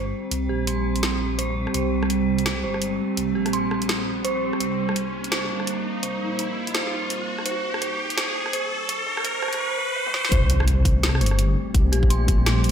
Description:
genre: half-time drum and bass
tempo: 168 BPM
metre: 4/4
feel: swing 59% on 16ths, half-time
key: C dorian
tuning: A4 = 440 Hz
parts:
  - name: dark analog pad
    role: sustained chords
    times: 0.0-12.7 s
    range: G3 to G4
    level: -28 LUFS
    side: right 2 dB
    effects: chorus, phaser, sidechain pumping
  - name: dark detuned synth bell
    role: arpeggios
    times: 0.0-12.7 s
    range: G4 to C6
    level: -30 LUFS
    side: right 2 dB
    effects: chorus, phaser, low-pass filter, tape echo
  - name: dark detuned saw bass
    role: bass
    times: 0.0-12.7 s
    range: G1 to C2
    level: -24 LUFS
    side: equal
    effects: none
  - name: riser and impact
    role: sound effects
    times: 0.3-11.7 s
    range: none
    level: -30 LUFS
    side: equal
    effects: none
  - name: metallic inharmonic drone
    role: texture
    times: 0.0-12.7 s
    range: A3 to C4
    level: -34 LUFS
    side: right 1 dB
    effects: chorus, built-in reverb
  - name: drum and bass drum kit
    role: drums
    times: 0.3-12.7 s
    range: hi-hat, rim click, snare drum, toms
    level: -28 LUFS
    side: equal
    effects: none
  - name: electronic kick drum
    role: drums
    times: 10.3-12.4 s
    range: none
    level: -20 LUFS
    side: equal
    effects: none
room: moderate lush hall reverb, RT60 1.9 s, digital ambience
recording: dreamy mix soaked in reverb, high-pass filter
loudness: -21 LUFS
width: side -8 dB against mid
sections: 0.0-10.3 A section; 10.3-12.7 B section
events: build-up 0.0-10.3; filter sweep on synth bell 0.0-10.3; filter sweep 0.0-10.3; riser 0.3-10.3; drum fill 10.0; drop 10.3-12.7; impact 10.3-11.7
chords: 0.0 C5

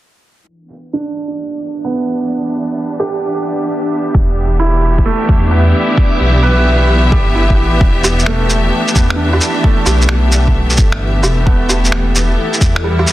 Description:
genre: future garage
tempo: 131 BPM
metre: 4/4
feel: swing 67% on 16ths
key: E minor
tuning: A4 = 441 Hz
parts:
  - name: clear symphonic string section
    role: sustained chords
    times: 0.5-13.1 s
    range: E3 to E5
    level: -19 LUFS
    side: left 1 dB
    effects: sidechain pumping
  - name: backwards swelling texture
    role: texture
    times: 1.7-13.1 s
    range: A3 to D5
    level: -25 LUFS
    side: left 1 dB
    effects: built-in reverb
  - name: felt-muted upright piano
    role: accompaniment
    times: 0.9-13.1 s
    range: G3 to B4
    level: -19 LUFS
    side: right 3 dB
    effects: sidechain pumping, low-pass filter, tape echo
  - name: dark detuned saw bass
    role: bass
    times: 4.1-13.1 s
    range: E1 to E2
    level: -14 LUFS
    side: equal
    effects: sidechain pumping
  - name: electronic kick drum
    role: drums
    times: 4.1-12.7 s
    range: none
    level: -12 LUFS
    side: equal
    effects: none
  - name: electronic shaker, woodblock and finger snaps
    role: drums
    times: 8.0-13.1 s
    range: none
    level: -17 LUFS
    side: right 1 dB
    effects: soft clipping on snare
room: light reverb, digital ambience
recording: dense, heavily limited modern master, low-pass filter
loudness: -11 LUFS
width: side -15 dB against mid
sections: 0.5-7.8 A section; 7.8-13.1 B section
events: fade-in on string section 0.5-7.8; filter sweep on felt piano 0.5-7.8; filter sweep 0.5-7.8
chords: 0.5 Em7

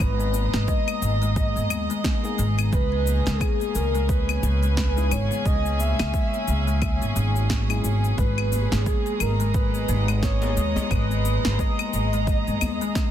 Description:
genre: organic downtempo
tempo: 88 BPM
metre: 4/4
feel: swing 58% on 16ths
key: G# minor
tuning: A4 = 440 Hz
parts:
  - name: breathy flute-like synth lead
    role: melody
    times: 0.0-13.1 s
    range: G#4 to E5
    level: -30 LUFS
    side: right 1 dB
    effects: lush chorus, ping-pong delay
  - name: warm studio string section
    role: sustained chords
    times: 0.0-13.1 s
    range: C#3 to A#5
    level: -32 LUFS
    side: equal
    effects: sidechain pumping
  - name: kalimba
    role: arpeggios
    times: 0.0-13.1 s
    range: D#3 to F#4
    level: -30 LUFS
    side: left 6 dB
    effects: ping-pong delay
  - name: upright bass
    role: bass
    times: 0.0-12.8 s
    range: G#1 to G#2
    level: -24 LUFS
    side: right 1 dB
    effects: sidechain pumping
  - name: electronic claves, cabasa and snare drum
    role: drums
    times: 0.0-13.1 s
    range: none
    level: -30 LUFS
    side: left 2 dB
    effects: overdrive, studio reverb
  - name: electronic kick drum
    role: drums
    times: 0.0-13.1 s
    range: none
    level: -24 LUFS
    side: right 1 dB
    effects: overdrive, studio reverb
  - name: bell-like tine electric piano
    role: accompaniment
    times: 2.2-10.6 s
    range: G#3 to G#4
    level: -36 LUFS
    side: left 3 dB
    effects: sidechain pumping, ping-pong delay
  - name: djembe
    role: percussion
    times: 8.5-12.8 s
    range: none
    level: -34 LUFS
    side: left 2 dB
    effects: none
room: studio reverb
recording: dense, heavily limited modern master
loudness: -20 LUFS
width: side -10 dB against mid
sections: 0.0-13.1 A section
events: none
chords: 0.0 G#madd9; 2.7 C#m; 8.2 G#madd9

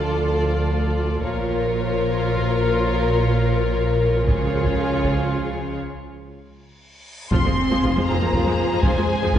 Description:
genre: cinematic, epic orchestral film score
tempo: 79 BPM (dotted quarters)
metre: 6/8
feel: straight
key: F minor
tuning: A4 = 440 Hz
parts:
  - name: rich symphonic violin section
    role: melody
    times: 0.0-9.4 s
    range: Db5 to C6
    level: -30 LUFS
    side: left 2 dB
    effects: none
  - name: warm symphonic violin section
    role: second line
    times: 0.0-9.4 s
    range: Ab4 to C5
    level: -27 LUFS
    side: left 3 dB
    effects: none
  - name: clear symphonic viola section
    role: accompaniment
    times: 0.0-9.4 s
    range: F3 to F4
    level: -28 LUFS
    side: equal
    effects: none
  - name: mellow French horn section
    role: sustained chords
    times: 0.0-9.4 s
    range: F3 to C5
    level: -27 LUFS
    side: left 2 dB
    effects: none
  - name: rich symphonic double bass section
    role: bass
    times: 0.0-9.4 s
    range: Bb1 to F2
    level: -26 LUFS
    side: right 1 dB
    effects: none
  - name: warm symphonic cello section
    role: bass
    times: 0.0-9.4 s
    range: D2 to C4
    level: -25 LUFS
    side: right 1 dB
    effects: none
  - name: taiko ensemble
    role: drums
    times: 1.2-9.4 s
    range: none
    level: -25 LUFS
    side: equal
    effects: none
  - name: reverse cymbal and impact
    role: sound effects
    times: 7.0-8.8 s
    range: none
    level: -32 LUFS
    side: equal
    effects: none
  - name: dark tuba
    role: bass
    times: 7.3-9.4 s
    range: F1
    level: -27 LUFS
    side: right 1 dB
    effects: none
  - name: clear trombone section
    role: sustained chords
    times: 7.8-9.4 s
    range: F3 to F4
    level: -34 LUFS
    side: right 3 dB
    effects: none
room: wet scoring stage reverb, RT60 2.0 s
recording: heard from further back in the room, nothing above 10.4 kHz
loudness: -18 LUFS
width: side -10 dB against mid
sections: 0.0-7.3 A section; 7.3-9.4 B section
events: build-up 0.0-7.3; break 5.8-7.3; drum fill 6.9-7.3; reverse cymbal 7.0; impact 7.3-8.8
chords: 0.0 Dm; 1.2 Bbm; 4.3 Db; 7.3 Fm

